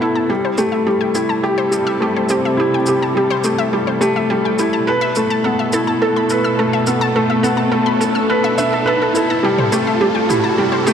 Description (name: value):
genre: piano and strings electronica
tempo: 105 BPM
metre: 4/4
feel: straight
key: A minor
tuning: A4 = 440 Hz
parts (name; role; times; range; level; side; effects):
- muted studio string section; sustained chords; 0.0-10.9 s; B2 to A4; -22 LUFS; right 2 dB; none
- analog pluck; arpeggios; 0.0-10.9 s; G4 to E6; -21 LUFS; right 1 dB; chorus, tape echo
- felt-muted upright piano; riff; 0.0-10.9 s; G3 to E5; -16 LUFS; left 1 dB; tape echo
- riser; sound effects; 4.2-10.9 s; none; -26 LUFS; right 3 dB; none
- electronic shaker and toms; drums; 0.6-10.9 s; none; -27 LUFS; equal; overdrive
room: moderate lush hall reverb, RT60 2.6 s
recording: none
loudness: -14 LUFS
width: side -8 dB against mid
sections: 0.3-10.9 A section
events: build-up 0.3-10.9; riser 4.2-10.9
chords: 0.3 Am7; 4.9 Esus4; 9.4 Am7